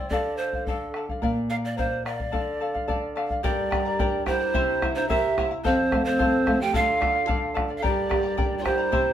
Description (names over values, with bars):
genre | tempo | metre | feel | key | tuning
andean folk, Andean ensemble | 109 BPM | 2/4 | straight | unclear | A4 = 440 Hz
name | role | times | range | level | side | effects
breathy bright large pan pipes | melody | 0.0-9.1 s | A4 to G5 | -26 LUFS | right 2 dB | none
charango | accompaniment | 0.0-9.1 s | E4 to Bb5 | -29 LUFS | left 2 dB | none
flamenco guitar | accompaniment | 0.0-9.1 s | F2 to D5 | -30 LUFS | right 2 dB | none
bombo | percussion | 0.1-9.1 s | none | -30 LUFS | left 1 dB | none
breathy pan flute | second line | 3.4-9.1 s | C4 to A4 | -29 LUFS | equal | none
room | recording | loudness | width
wet small room reverb, RT60 0.6 s | band playing live in one room | -22 LUFS | side -10 dB against mid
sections
0.0-3.4 A section; 3.4-9.1 B section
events
nylon-string guitar fill 2.6-3.4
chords
0.1 Dm; 1.2 Bb; 2.3 Dm; 3.4 Gm; 4.5 C7; 5.6 F; 6.7 Dm; 7.8 Gm